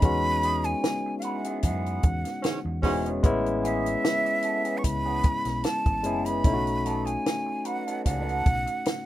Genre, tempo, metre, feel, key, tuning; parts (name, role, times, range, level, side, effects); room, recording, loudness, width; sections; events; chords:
lush 1970s-style soul; 75 BPM; 4/4; swing 54% on 16ths; A4 = 435 Hz
breathy jazz flute; melody; 0.0-9.1 s; E5 to C#6; -29 LUFS; right 2 dB
barky tine electric piano; accompaniment; 0.0-9.1 s; G#3 to F#4; -29 LUFS; left 3 dB; plate reverb
hollow-body short-scale fingered electric bass; bass; 0.0-8.7 s; E1 to F#2; -32 LUFS; equal
compact cocktail drum kit; drums; 0.0-9.1 s; hi-hat, kick drum, snare drum; -25 LUFS; equal
electric guitar through a small old amp; riff; 0.4-8.9 s; E3 to B4; -36 LUFS; right 3 dB; wah
warm horn section; stabs; 2.4-3.1 s; G#2 to C#4; -30 LUFS; right 4 dB
light reverb; rough home demo mix; -24 LUFS; side -14 dB against mid
0.0-9.1 A section
band accent 0.0-3.2
0.0 E6; 3.2 Amaj9; 6.5 B7